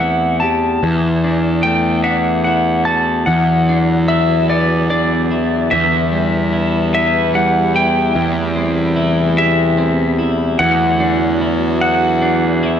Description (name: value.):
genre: rock.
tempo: 49 BPM (dotted quarters).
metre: 6/8.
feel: straight.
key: unclear.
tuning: A4 = 440 Hz.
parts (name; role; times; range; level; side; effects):
clean lap steel guitar; melody; 0.0-12.7 s; D5 to A5; -17 LUFS; equal; slapback echo.
twelve-string electric guitar; arpeggios; 0.0-12.8 s; E2 to G4; -19 LUFS; left 2 dB; slapback echo.
fuzz picked electric bass; bass; 0.0-12.8 s; E2; -17 LUFS; right 1 dB; overdrive.
warm symphonic string section; sustained chords; 3.3-12.8 s; C3 to F#4; -26 LUFS; right 2 dB; none.
room: moderate large studio reverb, RT60 1.0 s.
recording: none.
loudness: -13 LUFS.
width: side -8 dB against mid.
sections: 0.0-3.3 A section; 3.3-12.8 B section.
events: none.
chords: 0.0 Am7/E; 0.8 D/E; 3.3 Bm/E; 5.7 Em7; 8.2 Am7/E; 10.6 D/E.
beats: | 0.82 2.05 | 3.27 4.50 | 5.72 6.94 | 8.16 9.38 | 10.60 11.82.